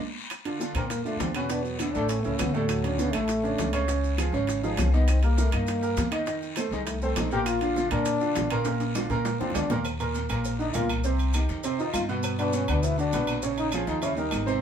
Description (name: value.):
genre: Afro-Cuban jazz.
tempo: 201 BPM.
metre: 4/4.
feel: straight.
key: Bb major.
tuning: A4 = 442 Hz.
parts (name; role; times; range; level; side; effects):
bongos and cowbell; percussion; 0.3-14.5 s; none; -37 LUFS; left 4 dB; none.
claves; percussion; 0.3-14.5 s; none; -41 LUFS; right 3 dB; none.
congas; percussion; 0.3-14.5 s; none; -39 LUFS; right 3 dB; none.
guiro; percussion; 0.3-14.6 s; none; -43 LUFS; left 5 dB; none.
maracas; percussion; 0.3-14.6 s; none; -41 LUFS; right 3 dB; none.
timbales and agogo bells; percussion; 0.3-14.5 s; none; -36 LUFS; right 4 dB; none.
warm concert grand piano; accompaniment; 0.5-14.6 s; A2 to Eb5; -29 LUFS; right 3 dB; none.
breathy trombone; second line; 0.7-14.6 s; Gb3 to G4; -30 LUFS; left 3 dB; none.
upright bass; bass; 0.7-14.6 s; Ab1 to Bb2; -28 LUFS; left 1 dB; none.
room: moderate studio ambience, RT60 0.4 s.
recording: band playing live in one room.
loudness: -24 LUFS.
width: side -8 dB against mid.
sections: 0.3-9.9 A section; 9.9-14.6 A section.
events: drum fill 0.0-0.3, 8.7-9.9, 14.2-14.6; band accent 0.0-0.3; trombone solo 0.3-14.6.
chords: 0.3 Bb; 1.5 E5; 2.1 A; 2.7 Dmaj7; 3.9 Dbadd9; 5.1 Cm7; 6.3 F7; 7.5 Bb; 9.9 Eb5; 11.0 Cm; 11.6 Fsus2; 12.2 G; 13.4 Bbm7; 14.0 Eb7.